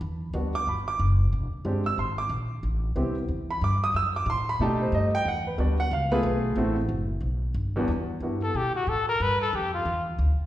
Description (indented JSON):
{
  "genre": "jazz",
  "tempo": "183 BPM",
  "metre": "4/4",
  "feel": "swing 62% on 8ths",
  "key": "E minor",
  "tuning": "A4 = 439 Hz",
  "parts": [
    { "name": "upright bass", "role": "bass", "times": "0.0-10.4 s", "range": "E1 to B2", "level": "-27 LUFS", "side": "equal", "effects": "none" },
    { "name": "warm grand piano", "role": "accompaniment", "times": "0.3-8.4 s", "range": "E2 to E6", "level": "-27 LUFS", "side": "right 1 dB", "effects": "none" },
    { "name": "breathy trumpet", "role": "melody", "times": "8.4-10.0 s", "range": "F4 to B4", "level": "-26 LUFS", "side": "left 2 dB", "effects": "none" }
  ],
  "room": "wet recital hall reverb, RT60 1.4 s",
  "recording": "recorded in a church or concert hall",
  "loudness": "-24 LUFS",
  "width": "side -14 dB against mid",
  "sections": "0.0-7.9 A section; 7.9-10.5 A section",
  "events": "trumpet solo 7.9-10.5",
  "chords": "0.0 Em9; 1.3 E7alt; 2.6 Am9; 3.9 F#m7b5; 4.6 B7alt; 5.3 Em9; 5.9 C#7b13; 6.6 F#m7b5; 7.2 B5; 7.9 Em7; 9.2 G5"
}